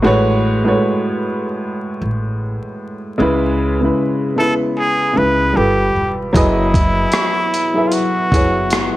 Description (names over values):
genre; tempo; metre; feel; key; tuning
lo-fi hip hop; 76 BPM; 4/4; swing 56% on 16ths; unclear; A4 = 438 Hz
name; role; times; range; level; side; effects
warm upright piano; accompaniment; 0.0-9.0 s; A2 to E5; -17 LUFS; equal; cassette tape
upright bass; bass; 0.0-8.9 s; E1 to C#2; -21 LUFS; equal; none
trumpet with straight mute; melody; 4.4-9.0 s; E4 to B4; -18 LUFS; equal; none
dark analog pad; sustained chords; 7.2-9.0 s; F#3 to E4; -24 LUFS; left 1 dB; chorus, phaser
dusty soul sampler-style drum kit; drums; 6.3-8.9 s; hi-hat, kick drum, rim click; -16 LUFS; equal; none
room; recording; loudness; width
moderate studio reverb, RT60 0.5 s; vinyl crackle; -14 LUFS; side -15 dB against mid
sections
0.0-9.0 A section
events
none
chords
0.0 Amaj13; 3.2 C#m7; 5.6 G9; 6.3 F#13sus4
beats
| 0.03 0.82 1.61 2.40 | 3.19 3.98 4.77 5.56 | 6.35 7.13 7.92 8.71